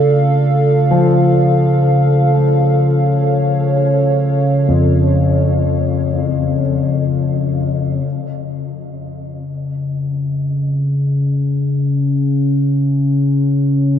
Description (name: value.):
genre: dark ambient drone.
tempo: free time.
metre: none.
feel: none.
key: unclear.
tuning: A4 = 440 Hz.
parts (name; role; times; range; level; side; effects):
dark analog pad; sustained chords; 0.0-8.1 s; A4 to F5; -18 LUFS; right 1 dB; chorus.
deep rumbling drone; drone; 0.0-14.0 s; C#3; -15 LUFS; left 1 dB; built-in reverb.
dark concert grand piano; arpeggios; 0.9-14.0 s; F2 to F3; -20 LUFS; left 2 dB; ping-pong delay.
room: moderate huge ambient reverb, RT60 7.8 s.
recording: dark, warm production.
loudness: -13 LUFS.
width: side -9 dB against mid.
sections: 0.0-8.1 A section; 8.1-14.0 B section.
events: fade-in on grand piano 8.1-14.0.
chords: 0.0 Dm; 8.1 N.C..